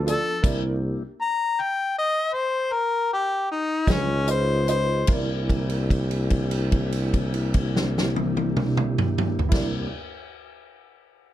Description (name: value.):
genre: slow blues.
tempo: 49-55 BPM (dotted quarters).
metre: 12/8.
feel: straight.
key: C mixolydian.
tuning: A4 = 441 Hz.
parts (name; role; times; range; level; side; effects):
mellow tonewheel organ; sustained chords; 0.0-9.9 s; F3 to A4; -31 LUFS; left 1 dB; slow rotary speaker, plate reverb.
warm tuba; bass; 0.0-9.9 s; C2 to D2; -26 LUFS; equal; none.
clear harmonica; melody; 0.1-5.1 s; Db4 to Bb5; -23 LUFS; left 3 dB; overdrive, plate reverb.
warm upright piano; accompaniment; 0.1-9.9 s; E4 to Eb5; -32 LUFS; right 6 dB; plate reverb.
natural country drum kit; drums; 0.1-9.7 s; crash cymbal, hi-hat, kick drum, snare drum, toms; -24 LUFS; equal; none.
room: moderate club reverb, RT60 0.7 s.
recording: dark, warm production.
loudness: -21 LUFS.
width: side -12 dB against mid.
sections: 0.0-5.1 A section; 5.1-10.0 B section.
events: slowing down 0.0-5.1; harmonica solo 0.0-5.1; held note 5.1-9.5.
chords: 0.5 C9; 3.9 Db9; 5.1 C9.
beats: | 0.46 1.57 2.71 3.88 | 5.09 6.32 7.55 8.79.